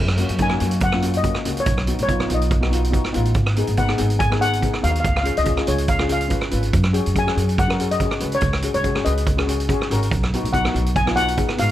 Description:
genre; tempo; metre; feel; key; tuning
calypso; 142 BPM; 4/4; swing 54% on 16ths; F# major; A4 = 440 Hz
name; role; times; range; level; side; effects
upright bass; bass; 0.0-11.7 s; G#1 to G#2; -22 LUFS; equal; none
street-band drum kit; drums; 0.1-11.7 s; hi-hat, kick drum, rim click; -23 LUFS; right 2 dB; none
steel pan; accompaniment; 0.2-11.7 s; A#3 to B4; -25 LUFS; left 2 dB; none
steel pan; melody; 0.4-11.7 s; C#5 to G#5; -23 LUFS; left 2 dB; none
room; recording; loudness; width
little or no reverb; close, detailed microphones; -17 LUFS; side -13 dB against mid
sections
0.0-11.7 A section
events
none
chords
0.0 F#; 1.7 B; 3.4 G#m7; 5.0 C#; 6.7 F#sus2; 8.4 C#sus4; 10.1 B

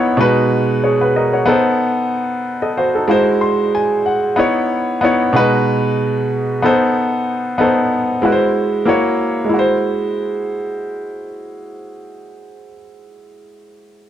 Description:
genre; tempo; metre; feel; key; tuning
soul; 93 BPM; 4/4; swing 54% on 16ths; G# minor; A4 = 441 Hz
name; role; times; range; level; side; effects
warm baby grand piano; solo; 0.0-14.1 s; B2 to B#5; -14 LUFS; equal; none
room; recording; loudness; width
moderate echo chamber reverb, RT60 2.1 s; none; -14 LUFS; side -10 dB against mid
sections
0.0-9.5 A section; 9.5-12.1 B section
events
grand piano fill 3.1-4.4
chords
0.2 G#m7/B; 1.5 B7b9; 3.1 G#7b13; 4.4 C#m9; 5.3 G#m7/B; 6.6 B7b9; 8.2 G#7b13; 8.9 F#7; 9.5 G#7b13

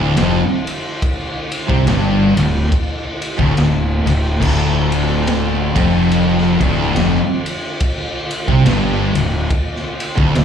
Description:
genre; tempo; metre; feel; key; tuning
stoner and doom metal; 71 BPM; 4/4; swing 58% on 8ths; D minor; A4 = 440 Hz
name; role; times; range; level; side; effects
tonewheel organ; sustained chords; 0.0-10.4 s; D3 to F4; -30 LUFS; right 1 dB; none
cranked stack guitar; riff; 0.0-10.4 s; D2 to C3; -22 LUFS; right 1 dB; overdrive
thick fuzz guitar; riff; 0.0-10.4 s; D2 to C3; -19 LUFS; left 9 dB; distortion
thick fuzz guitar; riff; 0.0-10.4 s; D2 to C3; -20 LUFS; right 8 dB; distortion, slapback echo
fuzz fingered electric bass; bass; 0.0-10.4 s; D1 to C2; -18 LUFS; equal; overdrive
raw garage drum kit; drums; 0.2-10.4 s; crash cymbal, kick drum, ride cymbal, snare drum; -20 LUFS; equal; none
room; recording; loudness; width
light reverb; live gig heard through the venue's PA, club reverb; -14 LUFS; side -8 dB against mid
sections
0.0-10.4 A section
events
none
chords
0.0 Dm

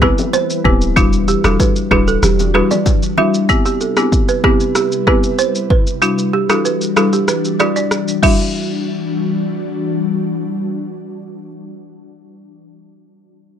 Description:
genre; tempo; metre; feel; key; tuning
afrobeats; 95 BPM; 4/4; straight; E minor; A4 = 441 Hz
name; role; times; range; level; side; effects
folk marimba with hard mallets; accompaniment; 0.0-12.5 s; G3 to G4; -17 LUFS; left 3 dB; none
ethereal airy pad; sustained chords; 0.0-11.8 s; C3 to B4; -21 LUFS; left 2 dB; ensemble chorus, built-in reverb, sidechain pumping
balafon; riff; 0.0-10.4 s; G4 to E5; -19 LUFS; right 8 dB; tape echo
clean 808-style bass; bass; 0.0-2.6 s; D1 to E1; -18 LUFS; equal; none
deep house drum kit; drums; 0.0-8.4 s; crash cymbal, kick drum, rim click, shaker; -16 LUFS; equal; none
bongos and congas; percussion; 0.2-3.3 s; none; -25 LUFS; left 5 dB; none
room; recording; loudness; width
moderate small room reverb, RT60 0.5 s; none; -13 LUFS; side -9 dB against mid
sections
0.0-8.5 A section; 8.5-11.1 B section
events
none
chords
0.0 Cmaj7; 1.0 Em9; 3.5 Cmaj7; 6.0 Em9

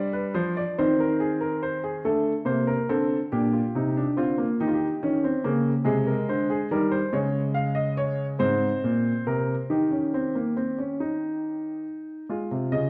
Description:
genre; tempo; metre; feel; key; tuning
classical, baroque-style 3-part fugue for grand piano; 47 BPM (dotted quarters); 6/8; straight; Ab major from 7.1 s; A4 = 442 Hz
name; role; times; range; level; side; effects
warm baby grand piano; solo; 0.0-12.9 s; Ab2 to F5; -26 LUFS; equal; none
room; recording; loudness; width
wet recital hall reverb, RT60 1.6 s; dark, warm production; -26 LUFS; mono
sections
0.0-2.1 A section; 2.1-12.3 B section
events
none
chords
0.0 G7; 0.8 Cm/Eb; 2.1 D5; 3.3 Gm/Bb; 4.6 Eb7; 5.9 Ab/C; 7.1 Db; 8.4 Ab; 9.7 Eb; 12.3 Ab

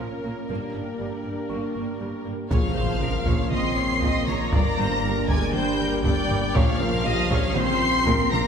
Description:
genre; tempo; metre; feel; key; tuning
cinematic, hybrid orchestral and electronic film score; 119 BPM; 4/4; straight; unclear; A4 = 440 Hz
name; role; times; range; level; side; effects
rich symphonic violin section; melody; 0.0-8.5 s; Db5 to C7; -30 LUFS; left 2 dB; none
clear symphonic viola section; accompaniment; 0.0-8.5 s; G3 to Eb5; -31 LUFS; right 2 dB; none
warm French horn section; sustained chords; 0.0-8.5 s; F3 to D4; -30 LUFS; left 2 dB; none
warm analog pad; sustained chords; 0.0-8.5 s; Db3 to Bb4; -32 LUFS; equal; chorus
clear symphonic double bass section; bass; 0.0-8.4 s; G1 to Bb1; -32 LUFS; right 2 dB; none
rich symphonic cello section; bass; 0.0-8.4 s; G2 to Bb2; -32 LUFS; right 2 dB; none
felt-muted upright piano; texture; 1.0-8.5 s; G3 to Db6; -38 LUFS; equal; none
warm symphonic violin section; second line; 2.5-8.5 s; F5 to C6; -29 LUFS; left 2 dB; none
warm trombone section; sustained chords; 2.5-8.4 s; Db3 to D4; -34 LUFS; right 4 dB; none
dark tuba; bass; 2.5-8.4 s; G1 to Bb1; -33 LUFS; right 3 dB; none
pure sine sub bass; bass; 2.5-8.5 s; G1 to Bb1; -34 LUFS; equal; none
solo taiko drums; drums; 2.5-8.5 s; none; -27 LUFS; left 1 dB; none
impact; sound effects; 2.5-4.5 s; none; -34 LUFS; equal; none
room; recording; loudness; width
wet church reverb, RT60 2.6 s; recorded in a church or concert hall; -21 LUFS; side -7 dB against mid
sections
0.0-2.5 A section; 2.5-8.5 B section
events
impact 2.5-4.5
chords
0.5 Gm; 2.5 Bbm; 4.5 Gm; 6.5 Bbm

